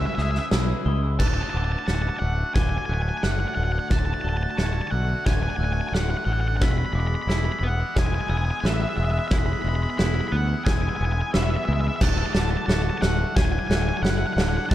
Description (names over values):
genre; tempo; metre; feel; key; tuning
post-rock; 89 BPM; 4/4; straight; D lydian; A4 = 440 Hz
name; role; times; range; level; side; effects
octave-fuzz lead guitar; melody; 0.0-14.7 s; E5 to B5; -29 LUFS; left 1 dB; distortion, digital delay
evolving wavetable pad; sustained chords; 0.0-14.7 s; C#3 to F#5; -36 LUFS; equal; phaser, built-in reverb
glockenspiel with soft plastic mallets; arpeggios; 0.0-14.7 s; D6 to G#6; -37 LUFS; right 5 dB; digital delay
twangy electric guitar; arpeggios; 0.0-14.7 s; D2 to G#4; -34 LUFS; left 4 dB; digital delay
growling fingered electric bass; bass; 0.0-14.7 s; D1 to D2; -24 LUFS; equal; overdrive
huge arena drum kit; drums; 0.2-14.7 s; crash cymbal, kick drum, snare drum; -26 LUFS; equal; none
room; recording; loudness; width
small room ambience; dark, warm production; -21 LUFS; side -13 dB against mid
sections
0.0-1.2 A section; 1.2-14.7 B section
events
build-up 1.2-14.7; drum fill 1.2-14.7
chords
0.0 C#m7; 1.2 D; 6.6 E; 12.0 D